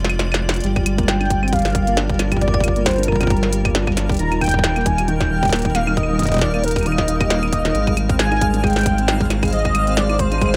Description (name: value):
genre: IDM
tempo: 135 BPM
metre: 4/4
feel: swing 56% on 16ths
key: G phrygian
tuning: A4 = 440 Hz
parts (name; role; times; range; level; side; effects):
- granular cloud pad; sustained chords; 0.0-10.6 s; G3 to D5; -29 LUFS; equal; built-in reverb
- round analog bass; bass; 0.0-10.6 s; Eb1 to Ab1; -24 LUFS; equal; none
- glitchy drum kit; drums; 0.0-10.6 s; claves, hi-hat, snare drum; -26 LUFS; equal; overdrive
- felt-muted upright piano; arpeggios; 0.6-10.6 s; Eb3 to Eb4; -26 LUFS; equal; delay
- twinkling granular texture; texture; 1.0-10.6 s; F5; -36 LUFS; equal; built-in reverb
- electronic kick drum; drums; 0.8-10.5 s; none; -24 LUFS; equal; overdrive
- warm velvety synth lead; melody; 1.1-10.6 s; Bb4 to Bb5; -25 LUFS; equal; chorus, delay
room: little or no reverb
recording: none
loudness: -18 LUFS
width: mono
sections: 0.0-10.6 A section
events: break 0.0-0.6; drum fill 0.0-0.6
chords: 0.0 Fm; 0.6 Gm7; 4.2 Eb; 7.7 Abmaj7